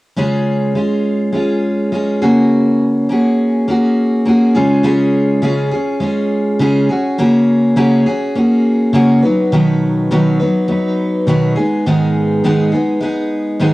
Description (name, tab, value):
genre	pop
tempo	103 BPM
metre	4/4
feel	swing 55% on 16ths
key	Db mixolydian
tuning	A4 = 440 Hz
part	picked steel-string acoustic guitar	solo	0.2-13.7 s	Ab2 to Cb5	-12 LUFS	equal	cassette tape
room	moderate spring reverb, RT60 1.3 s, studio ambience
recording	home recording on cassette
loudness	-12 LUFS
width	side -19 dB against mid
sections	0.2-4.8 A section; 4.8-13.7 B section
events	none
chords	0.2 Db; 2.2 Gbadd9/Db; 4.6 Db; 6.9 Gbadd9/Db; 9.2 Cb; 11.6 Abm